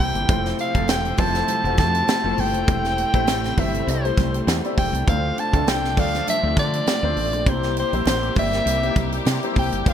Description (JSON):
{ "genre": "polished 1980s jazz-funk pop", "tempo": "100 BPM", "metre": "4/4", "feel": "swing 54% on 16ths", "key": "unclear", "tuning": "A4 = 440 Hz", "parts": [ { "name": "clear soprano saxophone", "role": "melody", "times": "0.0-9.9 s", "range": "C5 to A5", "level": "-24 LUFS", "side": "equal", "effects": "none" }, { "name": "warm baby grand piano", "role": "accompaniment", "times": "0.0-9.9 s", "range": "A3 to D5", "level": "-26 LUFS", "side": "left 3 dB", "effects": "wide subtle chorus" }, { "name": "warm studio string section", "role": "sustained chords", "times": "0.0-9.9 s", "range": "C3 to G4", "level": "-30 LUFS", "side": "left 1 dB", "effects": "none" }, { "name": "woody fretless electric bass", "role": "bass", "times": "0.0-9.9 s", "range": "E1 to D3", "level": "-25 LUFS", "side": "equal", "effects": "none" }, { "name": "tight funk drum kit", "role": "drums", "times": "0.1-9.9 s", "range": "hi-hat, kick drum, snare drum", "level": "-23 LUFS", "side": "right 1 dB", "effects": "none" }, { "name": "congas", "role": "percussion", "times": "0.3-9.9 s", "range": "none", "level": "-35 LUFS", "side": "right 8 dB", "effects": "none" } ], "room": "light reverb, studio reverb", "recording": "bright 1980s-style digital production", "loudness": "-18 LUFS", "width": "side -9 dB against mid", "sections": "0.0-9.9 A section", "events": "none", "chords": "0.3 Fmaj7; 2.7 Am7/E; 5.1 Dm7; 7.5 C7", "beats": "| 0.29 0.89 1.49 2.08 | 2.68 3.28 3.88 4.48 | 5.08 5.67 6.27 6.87 | 7.47 8.07 8.67 9.27 | 9.87" }